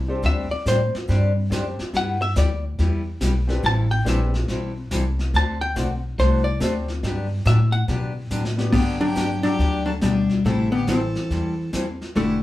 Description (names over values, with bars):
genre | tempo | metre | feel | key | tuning
country, western swing | 141 BPM | 4/4 | swing 65% on 8ths | G major | A4 = 441 Hz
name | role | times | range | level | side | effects
upright bass | bass | 0.0-12.4 s | E1 to B2 | -22 LUFS | equal | none
bright upright piano | accompaniment | 0.1-8.7 s | B3 to C5 | -30 LUFS | left 2 dB | none
picked steel-string acoustic guitar | accompaniment | 0.2-12.4 s | D3 to A4 | -29 LUFS | equal | none
vintage brush drum kit | drums | 0.2-12.4 s | brushed snare drum, crash cymbal, hi-hat, kick drum, snare drum | -30 LUFS | left 1 dB | none
hollow-body jazz guitar | melody | 0.3-12.4 s | B2 to A5 | -22 LUFS | left 2 dB | none
clear fiddle | second line | 8.7-12.4 s | D4 to A4 | -32 LUFS | equal | none
room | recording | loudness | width
moderate studio reverb, RT60 0.7 s | band playing live in one room | -19 LUFS | side -15 dB against mid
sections
0.0-8.7 A section; 8.7-12.4 B section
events
hollow-body jazz guitar solo 0.0-8.7; drum fill 8.3-8.7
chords
0.2 D7sus4; 1.9 G6; 3.6 Am11; 5.3 D7; 7.0 Gmaj9; 8.7 Gmaj7; 10.4 Am7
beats
| 0.24 0.66 1.09 1.51 | 1.94 2.36 2.78 3.21 | 3.63 4.06 4.48 4.91 | 5.33 5.76 6.18 6.61 | 7.03 7.46 7.88 8.31 | 8.74 9.16 9.59 10.02 | 10.44 10.87 11.30 11.72 | 12.15